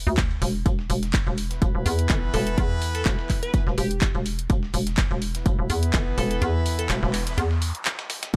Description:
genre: bass house.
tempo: 125 BPM.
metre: 4/4.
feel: swing 54% on 16ths.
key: E minor.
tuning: A4 = 440 Hz.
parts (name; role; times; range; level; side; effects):
hollow knocking FM bass; bass; 0.0-8.4 s; E1 to E2; -27 LUFS; equal; sidechain pumping.
dusty soul sampler-style drum kit; drums; 0.2-8.4 s; hi-hat, snare drum; -41 LUFS; equal; none.
electronic kick drum; drums; 0.2-8.4 s; none; -25 LUFS; equal; none.
house drum kit; drums; 0.2-8.4 s; handclaps, hi-hat; -33 LUFS; equal; none.
brilliant horn section; stabs; 1.5-7.4 s; E3 to B4; -34 LUFS; equal; sidechain pumping, delay.
glassy wavetable pluck; melody; 2.3-6.9 s; G4 to B4; -35 LUFS; equal; chorus, delay.
noise sweep; sound effects; 6.8-8.3 s; none; -41 LUFS; equal; none.
room: little or no reverb.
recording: none.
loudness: -24 LUFS.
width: mono.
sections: 0.0-8.4 A section.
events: kick drops out 6.4-8.3; noise sweep 6.8-8.3.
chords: 0.0 E5.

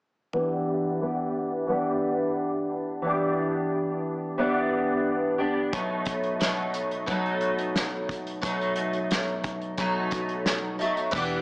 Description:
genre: indie pop, bedroom pop.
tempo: 89 BPM.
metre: 4/4.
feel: straight.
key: unclear.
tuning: A4 = 440 Hz.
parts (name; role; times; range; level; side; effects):
picked steel-string acoustic guitar; accompaniment; 0.3-11.4 s; B2 to G4; -25 LUFS; equal; ensemble chorus, warbly pitch drift, low-pass filter.
unplugged drum kit; drums; 5.7-11.3 s; crash cymbal, hi-hat, kick drum, snare drum; -30 LUFS; equal; vintage 12-bit sampler grit.
vintage muted fingered electric bass; bass; 11.1-11.4 s; E1; -37 LUFS; equal; none.
room: moderate spring reverb, RT60 2.5 s.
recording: small speaker sound.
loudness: -24 LUFS.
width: side -26 dB against mid.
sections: 0.3-11.1 A section.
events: filter sweep on steel-string acoustic guitar 0.3-11.1.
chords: 0.3 Em7; 5.7 B7.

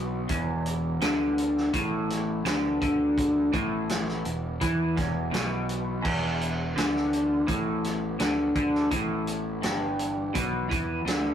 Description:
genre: psychedelic rock.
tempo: 84 BPM.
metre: 4/4.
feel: straight.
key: E minor.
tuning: A4 = 438 Hz.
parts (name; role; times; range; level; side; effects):
tonewheel organ; sustained chords; 0.0-11.3 s; E3 to G4; -38 LUFS; right 4 dB; overdrive, chorus vibrato, slow rotary speaker.
electric guitar through a small old amp; riff; 0.0-11.3 s; E2 to E3; -26 LUFS; left 1 dB; rotary speaker.
fuzz fingered electric bass; bass; 0.0-11.3 s; E1 to E2; -34 LUFS; equal; overdrive.
vintage drum kit; drums; 0.3-11.2 s; crash cymbal, hi-hat, kick drum, snare drum; -32 LUFS; right 1 dB; none.
room: light reverb.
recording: rough rehearsal-room recording, tube saturation.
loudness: -24 LUFS.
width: side -9 dB against mid.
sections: 0.0-11.3 A section.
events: none.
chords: 0.0 Em.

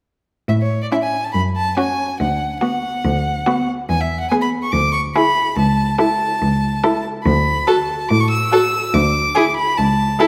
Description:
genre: quick classical-period movement for string quartet.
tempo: 142 BPM.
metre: 4/4.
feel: straight.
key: A major.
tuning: A4 = 440 Hz.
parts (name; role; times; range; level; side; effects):
clear violin; melody; 0.5-10.3 s; C#5 to E6; -22 LUFS; equal; none.
rich cello; bass; 0.5-10.1 s; C#2 to A2; -22 LUFS; equal; none.
rich violin; second line; 0.9-10.3 s; E4 to A4; -24 LUFS; equal; none.
rich viola; accompaniment; 0.9-10.3 s; B3 to F#4; -24 LUFS; equal; none.
room: wet recital hall reverb, RT60 1.9 s.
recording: none.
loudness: -18 LUFS.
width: mono.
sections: 0.5-10.3 A section.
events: none.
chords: 0.5 A; 1.3 F#5; 2.2 Bm/D; 3.9 E; 4.7 E7/D; 5.6 A/C#; 7.3 D; 8.9 E7(no3)/D (rootless); 9.8 A/C#.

